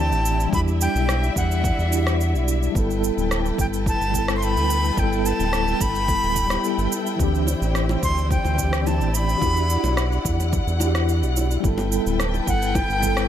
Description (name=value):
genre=sunset chillout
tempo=108 BPM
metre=4/4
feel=straight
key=G major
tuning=A4 = 442 Hz
part: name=breathy bright jazz flute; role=melody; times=0.0-13.3 s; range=F#5 to C6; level=-26 LUFS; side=left 1 dB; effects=ping-pong delay
part: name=mellow tine electric piano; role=accompaniment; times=0.0-13.3 s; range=E3 to A4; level=-26 LUFS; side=equal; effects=medium stereo tremolo, auto-pan, ping-pong delay
part: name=dark studio string section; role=sustained chords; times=0.0-13.3 s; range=E4 to G5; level=-30 LUFS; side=left 2 dB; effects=none
part: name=round analog bass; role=bass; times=0.0-13.3 s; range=D1 to E2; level=-23 LUFS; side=equal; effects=tube saturation
part: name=electronic cabasa and rim click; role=drums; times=0.1-13.3 s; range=none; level=-29 LUFS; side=right 2 dB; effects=none
part: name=electronic kick drum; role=drums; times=0.5-13.1 s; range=none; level=-26 LUFS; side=equal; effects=none
part: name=bongos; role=percussion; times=7.5-12.9 s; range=none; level=-31 LUFS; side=equal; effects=none
room=light reverb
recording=none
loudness=-19 LUFS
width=side -10 dB against mid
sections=0.0-13.3 A section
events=none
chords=0.0 D9sus4; 0.5 Em9; 2.8 G69; 7.2 D9sus4; 9.4 Em9; 11.6 G69